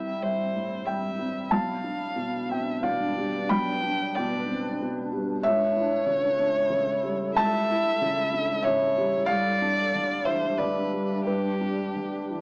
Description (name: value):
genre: neoclassical piano and strings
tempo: 93 BPM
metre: 3/4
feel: rubato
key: unclear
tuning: A4 = 440 Hz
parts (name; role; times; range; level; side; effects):
- dark violin; melody; 0.0-12.4 s; G4 to G5; -30 LUFS; equal; plate reverb
- felt-muted upright piano; accompaniment; 0.0-12.4 s; B1 to B5; -29 LUFS; equal; none
- granular cloud pad; sustained chords; 0.0-12.4 s; G3 to B4; -38 LUFS; equal; built-in reverb
room: moderate studio reverb, RT60 0.8 s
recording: worn, warbling old tape, cassette tape, warbly pitch drift, small speaker sound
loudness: -26 LUFS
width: mono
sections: 0.0-12.4 A section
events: none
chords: 0.0 C; 1.5 G/B; 5.4 A7/C#; 9.3 G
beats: 0.23 0.88 | 1.53 2.18 2.84 | 3.51 4.16 4.80 | 5.43 6.07 6.71 | 7.37 8.01 8.65 | 9.28 9.93 10.59 | 11.27 11.97